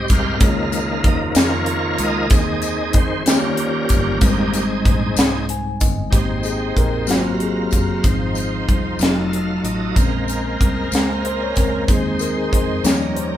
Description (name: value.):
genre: slow gospel.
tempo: 63 BPM (dotted quarters).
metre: 6/8.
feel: straight.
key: Ab major.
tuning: A4 = 440 Hz.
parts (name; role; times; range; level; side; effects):
mellow tine electric piano; accompaniment; 0.0-13.4 s; Ab2 to Ab5; -23 LUFS; left 1 dB; medium stereo tremolo.
bright tonewheel organ; sustained chords; 0.0-13.4 s; Eb3 to F5; -24 LUFS; right 2 dB; slow rotary speaker, overdrive, chorus vibrato.
fingered electric bass; bass; 0.0-13.4 s; F1 to F2; -25 LUFS; equal; none.
crisp fusion drum kit; drums; 0.1-13.3 s; hi-hat, kick drum, snare drum; -18 LUFS; equal; none.
tambourine; percussion; 0.1-13.1 s; none; -31 LUFS; left 5 dB; none.
warm studio string section; sustained chords; 6.1-13.4 s; Db4 to C6; -31 LUFS; equal; none.
room: moderate stone room reverb, RT60 0.9 s.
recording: band playing live in one room.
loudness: -16 LUFS.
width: side -12 dB against mid.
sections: 0.0-6.1 A section; 6.1-13.4 B section.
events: tonewheel organ solo 0.0-6.1; tine electric piano fill 5.2-6.1; tine electric piano solo 6.1-13.4; tonewheel organ fill 9.0-10.0.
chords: 0.4 Db6; 2.3 Ab/Eb; 3.3 Eb7; 4.2 Abmaj7; 7.1 Ab13; 8.0 Ab6; 9.0 F7b9; 10.0 Bbm9; 11.9 Ab/Eb; 12.8 Eb7.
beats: | 0.41 1.36 | 2.31 3.26 | 4.21 5.17 | 6.12 7.08 | 8.04 9.00 | 9.96 10.92 | 11.89 12.85.